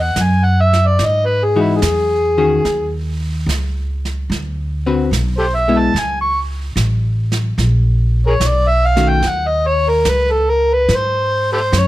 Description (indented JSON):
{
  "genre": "jazz ballad",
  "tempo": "72 BPM",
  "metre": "4/4",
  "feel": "swing 68% on 8ths",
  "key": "C# minor",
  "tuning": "A4 = 439 Hz",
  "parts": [
    { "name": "overdriven harmonica", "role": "melody", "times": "0.0-11.9 s", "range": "E4 to C#6", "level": "-15 LUFS", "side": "equal", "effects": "none" },
    { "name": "upright bass", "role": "bass", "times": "0.0-11.9 s", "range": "A1 to G#2", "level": "-17 LUFS", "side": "equal", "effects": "none" },
    { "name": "jazz brush drum kit", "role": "drums", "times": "0.2-11.9 s", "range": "brushed snare drum, hi-hat, snare drum", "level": "-26 LUFS", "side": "right 3 dB", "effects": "none" },
    { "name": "hollow-body jazz guitar", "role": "accompaniment", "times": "1.6-9.2 s", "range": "D3 to B4", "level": "-17 LUFS", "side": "left 4 dB", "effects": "none" }
  ],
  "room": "little or no reverb",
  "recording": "none",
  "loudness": "-13 LUFS",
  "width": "side -16 dB against mid",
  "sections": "0.0-11.9 A section",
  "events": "harmonica solo 0.0-11.9",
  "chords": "0.0 Emaj9; 2.6 C#sus2; 4.3 D13; 5.9 A; 7.6 Bmaj9/A#; 9.2 C#7sus2; 10.9 F#sus2"
}